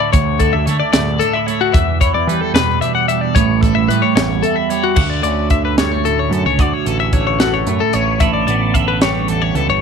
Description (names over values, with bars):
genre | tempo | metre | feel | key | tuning
math rock and midwest emo | 74 BPM (dotted quarters) | 6/8 | straight | D major | A4 = 442 Hz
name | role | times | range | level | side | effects
twelve-string electric guitar | accompaniment | 0.0-9.8 s | D2 to F#4 | -19 LUFS | right 12 dB | phaser
twelve-string electric guitar | arpeggios | 0.0-9.8 s | F#4 to F#5 | -18 LUFS | left 14 dB | none
growling picked electric bass | bass | 0.1-9.8 s | G1 to E3 | -19 LUFS | equal | overdrive
crisp fusion drum kit | drums | 0.1-9.7 s | crash cymbal, hi-hat, kick drum, snare drum | -18 LUFS | right 1 dB | none
room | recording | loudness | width
light reverb, studio reverb | 1960s-style stereo with parts hard left and right | -13 LUFS | side -6 dB against mid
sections
0.0-5.0 A section; 5.0-9.8 B section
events
none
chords
0.0 Dmaj9; 1.7 Em7; 3.4 A7; 5.0 Dmaj7; 8.2 A9sus4